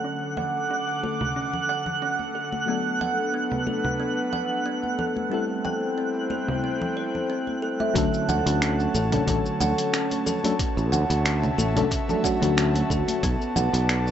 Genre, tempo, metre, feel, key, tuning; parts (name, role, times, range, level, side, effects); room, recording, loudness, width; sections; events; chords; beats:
sunset chillout; 91 BPM; 4/4; swing 54% on 16ths; D major; A4 = 440 Hz
mellow FM electric piano; accompaniment; 0.0-13.2 s; D3 to A4; -28 LUFS; left 2 dB; chorus, auto-pan, low-pass filter, tape echo
airy breathy pad; sustained chords; 0.0-14.1 s; D3 to D6; -31 LUFS; left 1 dB; chorus
kalimba; arpeggios; 0.0-14.1 s; B3 to G5; -29 LUFS; right 3 dB; low-pass filter, tape echo
twinkling granular texture; texture; 0.0-8.0 s; F#6; -31 LUFS; right 3 dB; built-in reverb
congas; percussion; 0.4-13.7 s; -34 LUFS; left 4 dB
dusty soul sampler-style drum kit; drums; 1.2-14.1 s; congas, finger snaps, hi-hat, shaker; -29 LUFS; equal; low-pass filter on perc, low-pass filter on snare, low-pass filter on hats, low-pass filter on room
sustaining fretless electric bass; bass; 8.0-14.1 s; A1 to D2; -24 LUFS; equal; tube saturation
electronic kick drum; drums; 8.0-13.4 s; -29 LUFS; equal
light reverb, digital ambience; dry, gritty hardware recording, nothing above 7.9 kHz; -22 LUFS; side -9 dB against mid
0.0-8.0 A section; 8.0-14.1 B section
filter sweep on FM electric piano 0.0-8.0
0.0 Dmaj7; 2.7 Bm7; 5.3 Am7; 8.0 Dmaj7; 13.2 Bm7
| 0.04 0.70 1.36 2.02 | 2.68 3.34 4.00 4.66 | 5.32 5.98 6.64 7.30 | 7.96 8.62 9.28 9.94 | 10.60 11.25 11.91 12.57 | 13.23 13.89